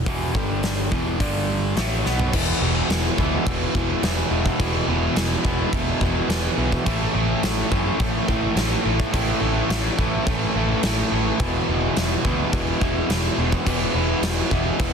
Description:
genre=hard rock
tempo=106 BPM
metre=4/4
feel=straight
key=E mixolydian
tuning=A4 = 442 Hz
part: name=picked electric bass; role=bass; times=0.0-14.9 s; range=E1 to F#2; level=-26 LUFS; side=equal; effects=none
part: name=overdriven semi-hollow guitar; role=riff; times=0.1-14.9 s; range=E2 to B3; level=-24 LUFS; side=right 1 dB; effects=none
part: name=sludgy distorted guitar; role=riff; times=0.1-14.9 s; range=E2 to E4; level=-27 LUFS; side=left 1 dB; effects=overdrive
part: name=huge arena drum kit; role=drums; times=0.1-14.9 s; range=crash cymbal, hi-hat, kick drum, snare drum, toms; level=-24 LUFS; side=equal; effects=none
room=light reverb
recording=dense, heavily limited modern master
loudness=-19 LUFS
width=side -6 dB against mid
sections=0.0-2.3 A section; 2.3-14.9 B section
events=drum fill 2.0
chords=0.3 G5; 0.9 E5; 1.2 G5; 1.8 E5; 2.3 E; 6.9 A; 11.4 E

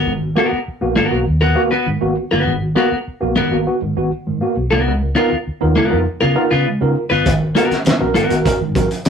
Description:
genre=funk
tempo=100 BPM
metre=4/4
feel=straight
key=unclear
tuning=A4 = 440 Hz
part: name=clean electric guitar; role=accompaniment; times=0.0-8.4 s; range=Cb4 to Cb5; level=-16 LUFS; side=left 2 dB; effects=none
part: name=vintage muted fingered electric bass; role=bass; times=0.0-8.9 s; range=G1 to Db3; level=-20 LUFS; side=equal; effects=none
part: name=tine electric piano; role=stabs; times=0.1-9.1 s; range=Ab2 to Bb4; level=-19 LUFS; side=right 2 dB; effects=overdrive, fast stereo tremolo
part: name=cloth-damped thuddy drum kit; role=drums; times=7.3-9.1 s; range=hi-hat, kick drum, snare drum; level=-17 LUFS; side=equal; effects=none
part: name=congas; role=percussion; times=7.3-9.1 s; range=none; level=-28 LUFS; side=right 6 dB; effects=none
room=moderate studio reverb, RT60 0.6 s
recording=rough rehearsal-room recording, warm saturation, lossy compression artefacts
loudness=-14 LUFS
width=side -7 dB against mid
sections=0.0-9.1 A section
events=none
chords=0.0 Abm9; 4.9 Db13; 7.3 Abm9

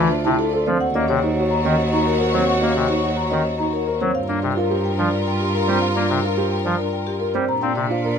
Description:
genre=classical, minimalist pattern music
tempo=108 BPM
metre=3/4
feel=straight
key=unclear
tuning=A4 = 440 Hz
part: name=marimba with medium mallets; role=melody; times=0.0-8.2 s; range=G4 to Bb5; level=-24 LUFS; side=left 5 dB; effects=none
part: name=dark clarinet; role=second line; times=0.0-8.2 s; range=D4 to Gb4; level=-28 LUFS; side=right 2 dB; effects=none
part: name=chamber organ, soft reed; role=accompaniment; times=0.0-7.9 s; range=C3 to C4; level=-22 LUFS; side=left 3 dB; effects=none
part: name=clear symphonic string section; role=sustained chords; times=0.0-8.2 s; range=F4 to D5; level=-28 LUFS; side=left 2 dB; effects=none
part: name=dark grand piano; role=arpeggios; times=0.0-8.2 s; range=C4 to Bb4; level=-25 LUFS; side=right 4 dB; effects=none
part: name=rich cello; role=bass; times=0.0-8.2 s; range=D2 to Bb2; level=-24 LUFS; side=right 1 dB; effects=none
room=little or no reverb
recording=close, detailed microphones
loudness=-18 LUFS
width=side -7 dB against mid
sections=0.0-8.2 A section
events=none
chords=0.0 Dm7; 0.8 Ebm7; 4.1 Gm7; 7.5 Bb

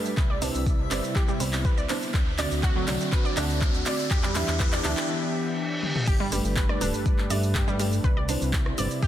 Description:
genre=progressive house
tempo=122 BPM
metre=4/4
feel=straight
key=G major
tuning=A4 = 441 Hz
part: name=warm analog pad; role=sustained chords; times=0.0-9.1 s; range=C3 to B4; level=-34 LUFS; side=left 2 dB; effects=chorus, sidechain pumping
part: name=felt-muted upright piano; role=stabs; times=0.0-9.1 s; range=G2 to E5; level=-31 LUFS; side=right 3 dB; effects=sidechain pumping, dub echo
part: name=riser, reverse cymbal and impact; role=sound effects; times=1.4-8.0 s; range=none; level=-36 LUFS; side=left 1 dB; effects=none
part: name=backwards swelling texture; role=texture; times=0.0-5.1 s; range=E5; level=-43 LUFS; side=left 4 dB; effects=built-in reverb, sidechain pumping
part: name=deep house drum kit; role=drums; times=0.1-9.1 s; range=crash cymbal, handclaps, hi-hat, rim click, shaker, toms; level=-31 LUFS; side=equal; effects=soft clipping on snare
part: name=wide unison pluck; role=arpeggios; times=0.2-9.1 s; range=F#3 to D5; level=-32 LUFS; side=equal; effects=sidechain pumping, dub echo
part: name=fat analog bass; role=bass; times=0.2-8.9 s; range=D1 to G2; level=-30 LUFS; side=equal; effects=sidechain pumping
part: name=electronic kick drum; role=drums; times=0.2-9.1 s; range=none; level=-24 LUFS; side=equal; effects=none
room=light reverb, digital ambience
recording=dense, heavily limited modern master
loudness=-23 LUFS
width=side -12 dB against mid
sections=0.0-6.1 A section; 6.1-9.1 B section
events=build-up 0.0-6.1; drum fill 0.0-5.1, 5.8; riser 1.4-5.1; break 5.1-6.1; reverse cymbal 5.1-6.1; drop 6.1-9.1; impact 6.1-8.0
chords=0.2 Cmaj7; 2.1 D7; 4.1 Em7; 6.1 Gadd9; 8.0 Cmaj7

